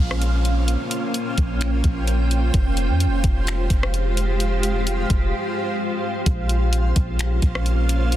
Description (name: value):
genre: hip hop, atmospheric cloud-rap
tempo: 129 BPM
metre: 4/4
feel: half-time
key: Bb dorian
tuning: A4 = 440 Hz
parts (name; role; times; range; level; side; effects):
- granular cloud pad; sustained chords; 0.0-8.2 s; Ab3 to G5; -24 LUFS; right 1 dB; built-in reverb, sidechain pumping
- soft 808-style bass; bass; 0.0-8.2 s; F1 to F2; -20 LUFS; equal; none
- downlifter; sound effects; 0.0-2.5 s; none; -39 LUFS; left 1 dB; none
- smooth R&B drum kit; drums; 0.1-8.2 s; finger snaps, hi-hat, kick drum, rim click; -22 LUFS; equal; soft clipping on snare
room: little or no reverb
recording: dense, heavily limited modern master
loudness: -19 LUFS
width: side -13 dB against mid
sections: 0.0-8.2 A section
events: break 5.3-6.3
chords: 0.0 Bbmadd9; 2.5 Fmadd9; 6.3 Bbmadd9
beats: 0.21 | 0.68 1.15 1.61 2.08 | 2.54 3.00 3.47 3.94 | 4.40 4.87 5.33 5.80 | 6.26 6.73 7.19 7.66 | 8.12